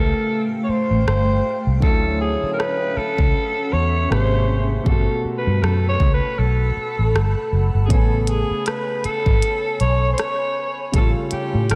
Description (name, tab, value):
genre	contemporary R&B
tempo	79 BPM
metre	4/4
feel	swing 58% on 16ths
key	A major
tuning	A4 = 440 Hz
part	growling alto saxophone	melody	0.0-11.8 s	G4 to C#5	-26 LUFS	equal	tape echo
part	dark grand piano	accompaniment	0.0-11.8 s	B2 to G#5	-30 LUFS	equal	lush chorus
part	granular cloud pad	sustained chords	0.0-11.8 s	A3 to B5	-30 LUFS	equal	built-in reverb, subtle chorus, sidechain pumping
part	vintage muted fingered electric bass	bass	0.0-11.8 s	F#1 to A2	-22 LUFS	equal	none
part	minimal click drum kit	drums	1.1-11.8 s	hi-hat, kick drum, rim click	-24 LUFS	equal	none
room	moderate lush hall reverb, RT60 3.0 s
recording	dreamy mix soaked in reverb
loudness	-20 LUFS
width	mono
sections	0.0-11.8 A section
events	break 0.0-7.9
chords	0.0 A7alt; 1.8 Dmaj9; 4.1 G#maj9; 4.9 Gmaj9; 7.9 Amaj9; 10.9 A7b13